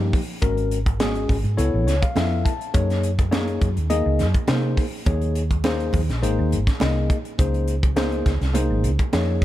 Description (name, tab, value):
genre	electric jazz fusion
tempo	104 BPM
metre	4/4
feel	straight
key	unclear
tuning	A4 = 440 Hz
part	tine electric piano	accompaniment	0.0-9.4 s	F3 to A5	-25 LUFS	left 3 dB	wide subtle chorus
part	woody fretless electric bass	bass	0.0-9.4 s	Ab1 to C3	-22 LUFS	equal	lush chorus
part	crisp fusion drum kit	drums	0.1-9.4 s	hi-hat, kick drum, snare drum	-23 LUFS	equal	none
part	congas	percussion	0.4-9.3 s	none	-31 LUFS	right 7 dB	none
room	small room ambience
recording	none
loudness	-19 LUFS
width	side -14 dB against mid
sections	0.0-9.4 A section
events	tine electric piano fill 1.6-2.7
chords	0.4 Ab9sus4; 1.6 Db7alt; 2.7 Gb69; 5.1 Eb5; 6.2 Abadd9; 7.4 Dbmaj9